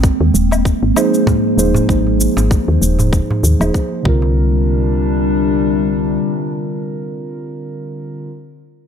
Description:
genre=organic downtempo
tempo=97 BPM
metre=4/4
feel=swing 56% on 16ths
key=C minor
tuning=A4 = 440 Hz
part: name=warbly tape-like pad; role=sustained chords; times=0.0-7.6 s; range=C3 to D4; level=-18 LUFS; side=left 1 dB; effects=chorus, built-in reverb, phaser, sidechain pumping
part: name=woody FM bass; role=bass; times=0.0-6.2 s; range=Eb1 to Eb2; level=-16 LUFS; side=left 1 dB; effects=sidechain pumping
part: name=electronic kick drum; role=drums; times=0.0-4.2 s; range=none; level=-17 LUFS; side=equal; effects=none
part: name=shaker and woodblock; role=drums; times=0.0-3.9 s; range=none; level=-23 LUFS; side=left 2 dB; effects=overdrive
part: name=darbuka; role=percussion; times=0.0-4.3 s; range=none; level=-21 LUFS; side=right 1 dB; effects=none
part: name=bronze singing bowl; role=texture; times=0.0-4.4 s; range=none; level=barely audible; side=none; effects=none
part: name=muted felt-like synth keys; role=accompaniment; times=1.0-8.3 s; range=D3 to C5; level=-20 LUFS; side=right 3 dB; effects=chorus, sidechain pumping, low-pass filter, ping-pong delay
room=light reverb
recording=none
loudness=-13 LUFS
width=side -8 dB against mid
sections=0.0-4.4 A section; 4.4-6.8 B section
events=filter sweep on synth keys 0.0-4.4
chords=0.0 Abadd9; 4.1 C9sus4

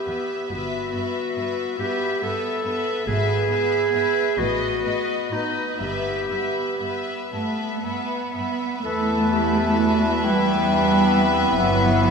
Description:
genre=classical, slow romantic movement for symphony orchestra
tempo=38-47 BPM (dotted quarters)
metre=6/8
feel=rubato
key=E minor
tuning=A4 = 438 Hz
part: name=warm studio violin section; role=melody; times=0.0-12.1 s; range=D#5 to E5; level=-29 LUFS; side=left 5 dB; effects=none
part: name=bright clarinet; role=second line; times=0.0-12.1 s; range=B3 to A4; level=-25 LUFS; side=right 1 dB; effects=none
part: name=clear studio violin section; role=second line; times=0.0-12.1 s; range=B4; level=-30 LUFS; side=left 2 dB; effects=none
part: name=dark chamber viola section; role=accompaniment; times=0.0-12.1 s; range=B3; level=-32 LUFS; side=right 2 dB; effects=none
part: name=warm studio cello section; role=bass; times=0.1-12.1 s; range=E2 to B3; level=-25 LUFS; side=right 2 dB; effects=none
part: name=rich studio double bass section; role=bass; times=0.5-12.1 s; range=G1 to E2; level=-28 LUFS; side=right 3 dB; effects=none
part: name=wooden flute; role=second line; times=7.3-12.1 s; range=F#5 to B5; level=-27 LUFS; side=left 4 dB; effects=none
part: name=mellow oboe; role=second line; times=8.8-12.1 s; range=B4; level=-28 LUFS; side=equal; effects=none
part: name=warm bassoon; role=accompaniment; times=8.8-12.1 s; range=E3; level=-29 LUFS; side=right 1 dB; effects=none
part: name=mellow French horn section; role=sustained chords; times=8.9-12.1 s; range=B3 to E4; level=-29 LUFS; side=left 4 dB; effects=none
room=wet concert hall reverb, RT60 2.2 s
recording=none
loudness=-20 LUFS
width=side -5 dB against mid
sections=0.0-8.8 A section; 8.8-12.1 A section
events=none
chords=0.0 Em; 0.5 Em/G; 3.1 E/G#; 4.4 B7/A; 5.8 Em/G; 8.8 Em; 11.6 Em/G

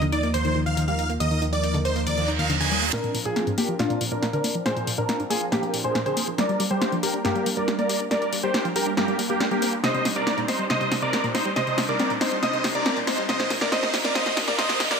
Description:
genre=uplifting trance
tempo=139 BPM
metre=4/4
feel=straight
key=Eb major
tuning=A4 = 441 Hz
part: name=big supersaw lead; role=melody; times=0.0-15.0 s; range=Bb3 to Ab5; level=-26 LUFS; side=equal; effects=phaser, low-pass filter, ping-pong delay
part: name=lush unison pad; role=sustained chords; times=0.0-14.8 s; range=F3 to C5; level=-31 LUFS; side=right 1 dB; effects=chorus, phaser
part: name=wide unison pluck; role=arpeggios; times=0.0-15.0 s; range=Eb2 to G4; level=-29 LUFS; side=left 1 dB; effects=ping-pong delay
part: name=solid FM bass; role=bass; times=0.0-2.9 s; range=Eb2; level=-28 LUFS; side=equal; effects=none
part: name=punchy analog drum machine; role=drums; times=0.0-15.0 s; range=hi-hat, snare drum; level=-27 LUFS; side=equal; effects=overdrive
part: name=reverse cymbal and riser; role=sound effects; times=2.2-15.0 s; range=none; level=-31 LUFS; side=right 3 dB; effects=none
part: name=clear concert grand piano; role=second line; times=2.9-15.0 s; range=F4 to Eb5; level=-31 LUFS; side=equal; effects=low-pass filter, ping-pong delay
room=moderate lush hall reverb, RT60 2.3 s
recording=high-pass filter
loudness=-21 LUFS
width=side -6 dB against mid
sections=0.0-2.9 A section; 2.9-15.0 B section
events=filter sweep on analog synth pad 0.0-2.9; reverse cymbal 2.2-2.9; build-up 2.9-15.0; drum fill 2.9-15.0; riser 2.9-15.0; filter sweep on supersaw synth 2.9-15.0; filter sweep on synth pluck 2.9-15.0; filter sweep on grand piano 2.9-15.0; filter sweep 2.9-15.0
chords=0.0 Ebsus2; 2.9 Bbadd9; 6.4 Gm; 9.8 Cmadd9; 13.3 Ebsus2

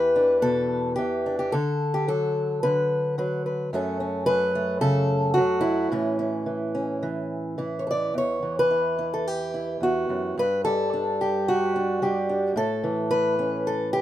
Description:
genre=folk, solo fingerstyle acoustic guitar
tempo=109 BPM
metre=4/4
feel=straight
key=E dorian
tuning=A4 = 440 Hz
part: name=fingerpicked acoustic archtop guitar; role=solo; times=0.0-14.0 s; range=E2 to D5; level=-22 LUFS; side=equal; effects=none
room=light reverb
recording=minimal, uncompressed stereo recording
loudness=-22 LUFS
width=side -12 dB against mid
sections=0.0-8.1 A section; 8.1-14.0 B section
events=none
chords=0.0 Em7; 1.5 Bm/D; 3.7 F#m; 5.9 A; 8.1 Emadd9; 10.4 G5; 12.6 A

